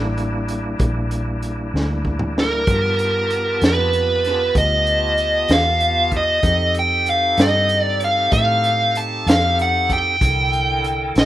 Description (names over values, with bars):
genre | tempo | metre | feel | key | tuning
slow blues | 64 BPM (dotted quarters) | 12/8 | straight | unclear | A4 = 438 Hz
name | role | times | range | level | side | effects
bright tonewheel organ | sustained chords | 0.0-11.3 s | D3 to A5 | -27 LUFS | equal | slow rotary speaker
vintage muted fingered electric bass | bass | 0.0-11.3 s | A1 to A2 | -23 LUFS | equal | none
crunchy breakbeat drum kit | drums | 0.2-11.3 s | hi-hat, kick drum, snare drum, toms | -20 LUFS | equal | none
smooth overdriven lead guitar | melody | 2.4-11.3 s | Bb4 to A5 | -17 LUFS | right 1 dB | none
room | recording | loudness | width
small room ambience | rough home demo mix | -16 LUFS | side -14 dB against mid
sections
0.0-11.3 A section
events
drum fill 1.7-2.7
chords
0.0 C13 (rootless); 2.7 G13; 6.4 F9; 10.2 C13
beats
0.80 1.74 | 2.68 3.62 4.56 5.50 | 6.44 7.38 8.32 9.27 | 10.21 11.15